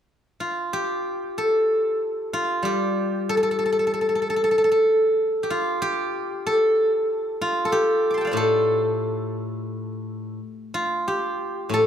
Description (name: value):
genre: chinese traditional, Chinese solo plucked strings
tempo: 93 BPM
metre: 4/4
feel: uneven beats, rubato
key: unclear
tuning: A4 = 439 Hz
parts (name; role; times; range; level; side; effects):
- steel-string zither; solo; 0.4-11.9 s; A2 to D6; -21 LUFS; equal; slapback echo
room: little or no reverb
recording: close, detailed microphones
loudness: -20 LUFS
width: side -9 dB against mid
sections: 0.0-11.9 A section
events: none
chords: none